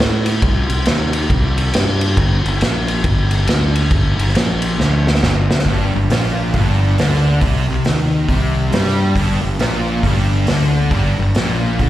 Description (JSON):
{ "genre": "blues rock power trio and southern rock", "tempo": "137 BPM", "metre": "4/4", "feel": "swing 62% on 8ths", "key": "unclear", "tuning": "A4 = 435 Hz", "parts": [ { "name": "fuzz fingered electric bass", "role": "bass", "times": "0.0-11.9 s", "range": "G1 to A2", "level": "-17 LUFS", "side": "equal", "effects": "overdrive" }, { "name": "vintage drum kit", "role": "drums", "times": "0.0-11.9 s", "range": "hi-hat, kick drum, ride cymbal, snare drum", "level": "-18 LUFS", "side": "equal", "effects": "none" }, { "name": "thick fuzz guitar", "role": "riff", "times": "5.7-11.9 s", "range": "G2 to G3", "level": "-17 LUFS", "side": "equal", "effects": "distortion, slapback echo" } ], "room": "small room ambience", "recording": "live gig heard through the venue's PA, recital hall reverb", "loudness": "-13 LUFS", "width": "side -14 dB against mid", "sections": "0.0-5.7 A section; 5.7-11.9 B section", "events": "drum fill 4.8-5.7", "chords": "0.4 C5; 2.2 G5; 7.4 C5; 9.2 G5" }